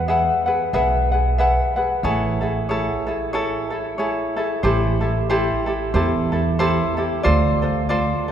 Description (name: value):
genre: Hawaiian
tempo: 92 BPM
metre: 4/4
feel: swing 58% on 8ths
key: A major, A minor from 4.6 s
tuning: A4 = 443 Hz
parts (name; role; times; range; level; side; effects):
- ukulele; accompaniment; 0.0-8.3 s; E4 to F#5; -20 LUFS; left 1 dB; none
- upright bass; bass; 0.0-8.1 s; A1 to E2; -22 LUFS; right 1 dB; none
room: wet church reverb, RT60 3.7 s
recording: recorded in a church or concert hall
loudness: -18 LUFS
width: side -9 dB against mid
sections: 0.0-4.6 A section; 4.6-8.3 B section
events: none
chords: 0.0 Eadd9; 2.0 Amaj7; 4.6 Am7; 7.3 Dm7